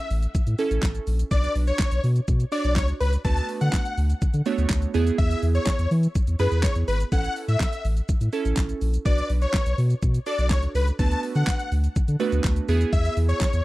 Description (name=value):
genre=dance-pop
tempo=124 BPM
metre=4/4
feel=straight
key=A major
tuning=A4 = 439 Hz
part: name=supersaw chords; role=melody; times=0.0-13.6 s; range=B4 to A5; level=-29 LUFS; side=left 2 dB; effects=tape echo
part: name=warm sub bass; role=bass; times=0.1-13.6 s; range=G#1 to E3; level=-22 LUFS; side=equal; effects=sidechain pumping
part: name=pop drum kit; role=drums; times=0.1-13.6 s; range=handclaps, hi-hat, kick drum, shaker, snare drum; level=-24 LUFS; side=equal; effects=overdrive
part: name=glassy digital keys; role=accompaniment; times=0.6-13.5 s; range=A3 to C#5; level=-29 LUFS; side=right 5 dB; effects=chorus, sidechain pumping
room=little or no reverb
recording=dry, close 1970s-style studio recording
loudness=-21 LUFS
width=side -18 dB against mid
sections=0.0-13.6 A section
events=none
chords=0.0 A; 1.3 Bm; 3.2 D6; 4.9 E; 7.1 A; 9.1 Bm; 11.0 D6; 12.7 E